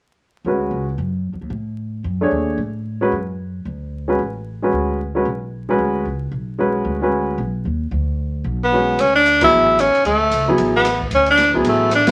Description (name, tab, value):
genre	modal jazz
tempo	225 BPM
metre	4/4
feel	swing 59% on 8ths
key	D lydian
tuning	A4 = 436 Hz
part	upright bass	bass	0.4-12.1 s	A1 to A2	-27 LUFS	equal	none
part	clear grand piano	accompaniment	0.5-11.9 s	F#3 to C#5	-21 LUFS	equal	none
part	bright tenor saxophone	melody	8.6-12.1 s	A3 to E4	-16 LUFS	equal	none
part	swinging big-band drum kit	drums	9.0-12.1 s	hi-hat, kick drum, ride cymbal, rim click, snare drum	-28 LUFS	equal	none
room	wet studio reverb, RT60 0.7 s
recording	vinyl crackle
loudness	-19 LUFS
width	mono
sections	0.4-9.0 A section; 9.0-12.1 B section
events	band accent 9.4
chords	0.4 Dmaj7; 4.7 Bm69; 9.0 Dadd9